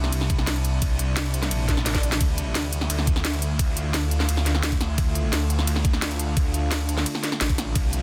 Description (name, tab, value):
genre	dark technical drum and bass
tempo	173 BPM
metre	4/4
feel	straight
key	D minor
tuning	A4 = 440 Hz
part	metallic inharmonic drone	sustained chords	0.0-8.0 s	C3 to F4	-34 LUFS	equal	chorus, built-in reverb, sidechain pumping
part	snarling distorted saw bass	bass	0.0-8.0 s	A1 to D2	-27 LUFS	equal	distortion, overdrive, sidechain pumping
part	drum and bass drum kit	drums	0.0-8.0 s	hi-hat, ride cymbal, snare drum	-29 LUFS	equal	none
part	electronic kick drum	drums	0.3-7.8 s	none	-26 LUFS	equal	none
part	swell	sound effects	1.7-2.2 s	none	-41 LUFS	equal	none
room	light reverb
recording	dense, heavily limited modern master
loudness	-24 LUFS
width	mono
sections	0.0-8.0 A section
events	swell 1.7-2.2; drum fill 1.9-2.2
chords	0.0 C; 2.2 Dm